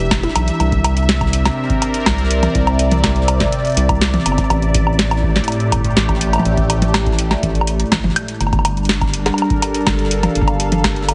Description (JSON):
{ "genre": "IDM", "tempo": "123 BPM", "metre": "4/4", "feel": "straight", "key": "unclear", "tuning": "A4 = 439 Hz", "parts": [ { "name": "phased analog pad", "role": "sustained chords", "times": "0.0-11.1 s", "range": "A2 to F5", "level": "-22 LUFS", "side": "equal", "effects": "phaser, chorus" }, { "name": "round analog bass", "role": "bass", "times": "0.0-11.1 s", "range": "E1 to C2", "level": "-20 LUFS", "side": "equal", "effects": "tube saturation" }, { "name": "booming analog drum machine", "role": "drums", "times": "0.1-11.1 s", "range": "hi-hat, snare drum, toms, woodblock", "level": "-21 LUFS", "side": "equal", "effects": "digital delay" }, { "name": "electronic kick drum", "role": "drums", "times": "0.1-10.9 s", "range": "none", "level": "-24 LUFS", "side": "equal", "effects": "none" } ], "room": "light reverb", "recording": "heavily compressed radio sound, multiband compression, nothing above 10.3 kHz", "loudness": "-16 LUFS", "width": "mono", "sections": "0.0-11.1 A section", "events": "none", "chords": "0.0 Em7; 0.6 C7; 4.5 A7sus4; 8.4 Gm7" }